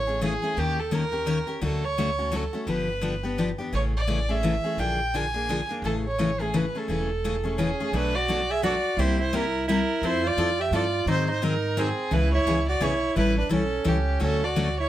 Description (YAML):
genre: acoustic string swing (jazz manouche)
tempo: 171 BPM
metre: 3/4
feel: swing 60% on 8ths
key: unclear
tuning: A4 = 440 Hz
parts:
  - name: warm violin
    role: melody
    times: 0.0-14.9 s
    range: G4 to G#5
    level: -28 LUFS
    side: right 1 dB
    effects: none
  - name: upright bass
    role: bass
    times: 0.0-14.9 s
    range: E1 to G#2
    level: -29 LUFS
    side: right 1 dB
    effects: none
  - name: picked steel-string acoustic guitar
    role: accompaniment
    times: 0.1-14.7 s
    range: B2 to A#4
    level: -27 LUFS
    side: left 3 dB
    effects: none
  - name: mellow soprano saxophone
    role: second line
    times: 7.6-14.9 s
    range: B#3 to G#4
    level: -28 LUFS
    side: right 3 dB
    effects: none
room: light reverb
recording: none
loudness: -23 LUFS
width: side -13 dB against mid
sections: 0.0-7.9 A section; 7.9-14.9 B section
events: none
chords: 0.0 Amaj7; 0.6 D#7; 1.6 Dmaj7; 2.7 G7; 3.7 Amaj7; 4.8 Bb6; 5.8 Amaj7; 7.9 Bm7; 9.0 C7; 10.0 Fmaj9; 11.1 G#7; 12.1 C#m7; 13.2 A7; 14.2 Dmaj7